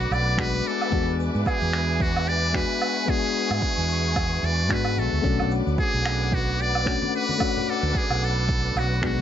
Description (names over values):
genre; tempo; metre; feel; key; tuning
sunset chillout; 111 BPM; 4/4; swing 57% on 16ths; B dorian; A4 = 440 Hz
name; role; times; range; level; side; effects
trumpet with metal mute; melody; 0.0-9.2 s; F#4 to D5; -26 LUFS; equal; digital delay
soft electric-piano-like synth keys; accompaniment; 0.0-9.2 s; G#3 to F#4; -28 LUFS; moving between left 8 dB and right 7 dB; chorus, auto-pan, low-pass filter, digital delay
warm symphonic string section; sustained chords; 0.0-9.2 s; B4 to D6; -33 LUFS; left 1 dB; none
mellow fretless electric bass; bass; 0.0-9.2 s; B1 to G#2; -26 LUFS; right 1 dB; none
shaker, woodblock and finger snaps; drums; 0.0-9.2 s; none; -31 LUFS; right 3 dB; none
electronic kick drum; drums; 0.4-9.2 s; none; -28 LUFS; right 1 dB; overdrive
congas; percussion; 5.4-9.2 s; none; -35 LUFS; right 3 dB; none
room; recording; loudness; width
light reverb, small room ambience; nothing above 7.6 kHz; -21 LUFS; side -10 dB against mid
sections
0.0-9.2 A section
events
none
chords
0.0 Bm7; 0.6 E7; 5.2 Bm7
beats
0.38 | 0.92 1.46 2.00 2.54 | 3.08 3.62 4.16 4.70 | 5.24 5.78 6.32 6.87 | 7.41 7.95 8.49 9.03